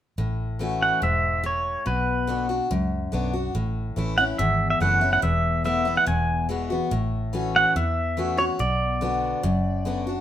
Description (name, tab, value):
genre	country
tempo	143 BPM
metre	4/4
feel	straight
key	A major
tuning	A4 = 441 Hz
part	picked steel-string acoustic guitar	accompaniment	0.2-10.2 s	E2 to F#4	-26 LUFS	left 3 dB	none
part	vintage muted fingered electric bass	bass	0.2-10.2 s	E1 to E2	-27 LUFS	right 1 dB	none
part	pedal steel guitar	melody	0.8-10.0 s	B4 to G#5	-23 LUFS	right 2 dB	none
room	moderate studio reverb, RT60 0.8 s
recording	minimal, uncompressed stereo recording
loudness	-21 LUFS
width	side -11 dB against mid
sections	0.2-6.9 A section; 6.9-10.2 B section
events	none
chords	0.2 A6; 1.9 Bm; 3.5 A; 5.2 Esus4; 6.1 Eadd9; 6.9 A6; 8.6 Bm